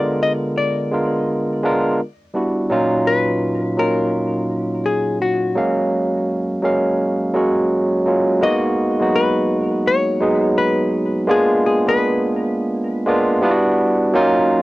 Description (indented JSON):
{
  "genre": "R&B",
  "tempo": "84 BPM",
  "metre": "4/4",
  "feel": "swing 64% on 16ths",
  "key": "G# dorian",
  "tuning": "A4 = 439 Hz",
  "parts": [
    { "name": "hollow-body jazz guitar", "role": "melody", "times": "0.0-13.7 s", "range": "F#4 to D#5", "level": "-21 LUFS", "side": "left 3 dB", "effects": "cassette tape" },
    { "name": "barky tine electric piano", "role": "accompaniment", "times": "0.0-14.6 s", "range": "A#2 to E#5", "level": "-16 LUFS", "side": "right 1 dB", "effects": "none" }
  ],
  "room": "little or no reverb",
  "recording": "home recording on cassette",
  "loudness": "-16 LUFS",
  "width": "side -18 dB against mid",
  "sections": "0.0-8.4 A section; 8.4-14.6 B section",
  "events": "none",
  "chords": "0.0 A#7b9; 2.0 Em7; 2.7 D#m7; 5.6 F#maj7; 8.4 G#m9; 11.3 A#7b9; 13.4 Em7"
}